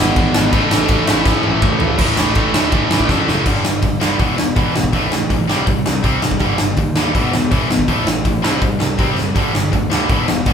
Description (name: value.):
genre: punk rock.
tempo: 163 BPM.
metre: 4/4.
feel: straight.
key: unclear.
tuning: A4 = 440 Hz.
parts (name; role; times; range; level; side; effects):
biting overdriven guitar; riff; 0.0-3.5 s; G#2 to E4; -22 LUFS; equal; none.
distorted electric guitar; riff; 0.0-10.5 s; E2 to C4; -21 LUFS; right 8 dB; overdrive.
tight distorted guitar; riff; 0.0-10.5 s; E2 to C4; -20 LUFS; left 7 dB; distortion.
picked electric bass; bass; 0.0-10.5 s; E1 to F#2; -23 LUFS; equal; none.
big rock drum kit; drums; 0.2-10.5 s; crash cymbal, hi-hat, kick drum, ride cymbal, snare drum, toms; -17 LUFS; equal; none.
room: light reverb.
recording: band playing live in one room.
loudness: -13 LUFS.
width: side -7 dB against mid.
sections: 0.0-2.0 A section; 2.0-3.5 B section; 3.5-10.5 C section.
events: drum fill 1.3-2.0, 3.1-3.5, 9.2.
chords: 0.0 E/G#; 0.5 A; 3.5 G5; 4.2 E5; 4.9 A5; 5.5 C5; 6.4 G5; 7.1 E; 7.9 A5; 8.4 C5; 9.4 G5.